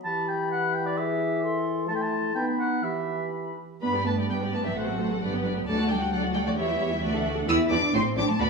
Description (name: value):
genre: quick classical-period movement for symphony orchestra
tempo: 131 BPM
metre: 2/4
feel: rubato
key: E minor, G major from 3.8 s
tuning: A4 = 439 Hz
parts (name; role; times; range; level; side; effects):
- mellow silver concert flute; second line; 0.0-3.6 s; B5 to D6; -35 LUFS; left 2 dB; none
- warm clarinet; second line; 0.0-3.6 s; D#4 to A4; -32 LUFS; left 1 dB; none
- warm oboe; second line; 0.0-3.3 s; D5 to A5; -29 LUFS; equal; none
- mellow French horn section; sustained chords; 0.0-3.6 s; E3 to B3; -31 LUFS; left 2 dB; none
- muted chamber violin section; melody; 3.8-8.5 s; D5 to E6; -29 LUFS; left 2 dB; none
- muted chamber violin section; second line; 3.8-8.5 s; E4 to F#5; -32 LUFS; left 3 dB; none
- muted chamber viola section; accompaniment; 3.8-8.5 s; E3 to A4; -30 LUFS; right 2 dB; none
- muted chamber cello section; bass; 3.8-8.5 s; D3 to E4; -29 LUFS; right 1 dB; none
- muted chamber double bass section; bass; 3.8-8.5 s; G1 to G2; -31 LUFS; right 4 dB; none
room: wet recital hall reverb, RT60 1.6 s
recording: small room ambience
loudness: -24 LUFS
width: side -4 dB against mid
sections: 0.0-3.8 A section; 3.8-8.5 B section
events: none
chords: 0.0 Em; 1.9 Am; 2.4 B; 2.8 Em; 3.8 G; 4.8 F#dim/A; 5.2 G; 5.7 D; 6.6 C#dim/E; 7.0 D; 7.5 Em7; 7.9 Am7